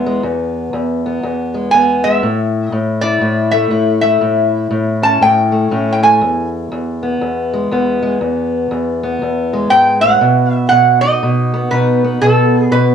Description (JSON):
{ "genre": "acoustic country blues, solo or duo", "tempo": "120 BPM", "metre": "4/4", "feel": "swing 62% on 8ths", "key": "E major", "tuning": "A4 = 438 Hz", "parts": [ { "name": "fingerpicked steel-string acoustic guitar", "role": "accompaniment", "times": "0.0-12.9 s", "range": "E2 to E4", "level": "-15 LUFS", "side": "left 1 dB", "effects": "none" }, { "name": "metal-body resonator slide guitar", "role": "melody", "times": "1.7-6.5, 9.7-12.9 s", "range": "A4 to A5", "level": "-13 LUFS", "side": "right 1 dB", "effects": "none" } ], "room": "moderate small room reverb, RT60 0.5 s", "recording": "worn, warbling old tape, cassette tape, warbly pitch drift", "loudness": "-12 LUFS", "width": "side -8 dB against mid", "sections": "0.0-12.9 A section", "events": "none", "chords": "0.0 E; 2.2 A; 6.2 E; 10.2 B" }